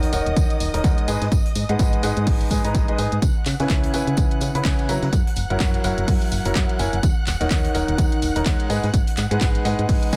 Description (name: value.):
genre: piano house.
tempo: 126 BPM.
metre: 4/4.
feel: swing 57% on 16ths.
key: unclear.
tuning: A4 = 439 Hz.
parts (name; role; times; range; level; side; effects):
warm symphonic violin section; sustained chords; 0.0-10.2 s; D#5 to F#6; -36 LUFS; equal; sidechain pumping.
bright concert grand piano; riff; 0.0-10.2 s; C#3 to B5; -27 LUFS; equal; vintage 12-bit sampler grit, sidechain pumping, low-pass filter.
solid FM bass; bass; 0.0-10.2 s; D#1 to C#3; -27 LUFS; equal; sidechain pumping.
garage drum kit; drums; 0.0-10.2 s; handclaps, hi-hat; -32 LUFS; equal; none.
vintage drum kit; drums; 0.0-10.2 s; hi-hat, snare drum, tambourine; -40 LUFS; equal; sidechain pumping on hats, high-pass filter on hats, high-pass filter on snare, sidechain pumping on perc, high-pass filter on perc, high-pass filter on room.
electronic kick drum; drums; 0.4-10.2 s; none; -23 LUFS; equal; none.
room: small room reverb.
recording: none.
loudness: -21 LUFS.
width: mono.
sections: 0.0-10.2 A section.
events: none.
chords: 0.0 D#m7; 1.1 G#m7; 3.2 C#m7; 5.1 F#7; 7.0 D#m7; 8.7 G#m7.